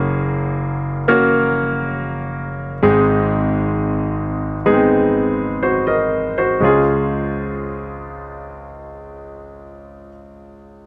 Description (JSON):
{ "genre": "pop", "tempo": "59-72 BPM", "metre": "4/4", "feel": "straight", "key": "Db major", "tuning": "A4 = 440 Hz", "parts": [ { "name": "clear concert grand piano", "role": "solo", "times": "0.0-10.9 s", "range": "Gb1 to Eb5", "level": "-19 LUFS", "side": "equal", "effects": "none" } ], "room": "moderate recital hall reverb, RT60 1.3 s", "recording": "none", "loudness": "-18 LUFS", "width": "mono", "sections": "0.0-6.6 A section; 6.6-10.7 B section", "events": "slowing down 0.0-6.6", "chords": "0.0 Gbadd9; 2.8 Ab; 6.6 Db" }